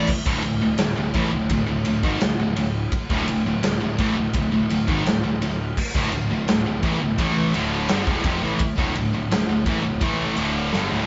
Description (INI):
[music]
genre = heavy metal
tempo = 84 BPM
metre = 4/4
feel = straight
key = unclear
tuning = A4 = 435 Hz
[part]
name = distorted electric guitar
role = riff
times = 0.0-11.1 s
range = D2 to A3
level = -30 LUFS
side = equal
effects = overdrive
[part]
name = heavy high-gain guitar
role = riff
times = 0.0-11.1 s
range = D2 to A3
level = -28 LUFS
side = equal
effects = distortion
[part]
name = thick fuzz guitar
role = riff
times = 0.0-11.1 s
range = D2 to A3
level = -31 LUFS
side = equal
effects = distortion
[part]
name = fuzz picked electric bass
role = bass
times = 0.0-11.1 s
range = D1 to A1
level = -31 LUFS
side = equal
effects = overdrive
[part]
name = big rock drum kit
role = drums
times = 0.1-10.9 s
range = crash cymbal, kick drum, ride cymbal, snare drum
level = -28 LUFS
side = equal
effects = none
[sound]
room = moderate studio reverb, RT60 0.5 s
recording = band playing live in one room, nothing above 7.7 kHz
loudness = -22 LUFS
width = mono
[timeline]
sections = 0.1-11.1 A section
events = drum fill 10.7-11.1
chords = 0.1 D5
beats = | 0.09 0.80 1.51 2.21 | 2.92 3.63 4.34 5.05 | 5.76 6.47 7.18 7.89 | 8.60 9.31 10.03 10.73